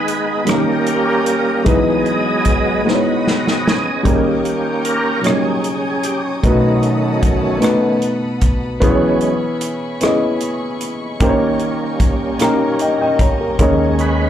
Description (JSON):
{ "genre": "slow gospel", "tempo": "50 BPM (dotted quarters)", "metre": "6/8", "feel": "straight", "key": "unclear", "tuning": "A4 = 440 Hz", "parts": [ { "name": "warm baby grand piano", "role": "accompaniment", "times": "0.0-14.3 s", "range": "B2 to A#5", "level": "-17 LUFS", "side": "left 1 dB", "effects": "slapback echo" }, { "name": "tonewheel organ", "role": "sustained chords", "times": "0.0-14.3 s", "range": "D#3 to D#5", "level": "-19 LUFS", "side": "right 1 dB", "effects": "fast rotary speaker, overdrive, chorus vibrato" }, { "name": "warm studio string section", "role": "sustained chords", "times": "0.0-14.3 s", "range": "E4 to D#6", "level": "-31 LUFS", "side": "left 2 dB", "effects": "none" }, { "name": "warm soul drum kit", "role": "drums", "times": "0.1-14.2 s", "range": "hi-hat, kick drum, rim click, snare drum", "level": "-18 LUFS", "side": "equal", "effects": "none" }, { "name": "fingered electric bass", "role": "bass", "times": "13.6-14.3 s", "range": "D#2", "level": "-18 LUFS", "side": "equal", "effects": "none" } ], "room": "moderate club reverb, RT60 0.8 s", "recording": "live gig heard through the venue's PA, club reverb", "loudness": "-14 LUFS", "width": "side -10 dB against mid", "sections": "0.0-14.3 A section", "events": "tonewheel organ solo 0.0-14.3; drum fill 2.9-4.1; grand piano fill 12.4-13.6", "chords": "0.5 D#7; 1.7 Emaj7; 4.1 D#7; 6.4 B7; 8.8 E6; 11.2 D#7; 13.6 D#7sus4", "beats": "0.47 | 1.67 2.86 | 4.05 5.25 | 6.44 7.63 | 8.83 10.02 | 11.21 12.40 | 13.59" }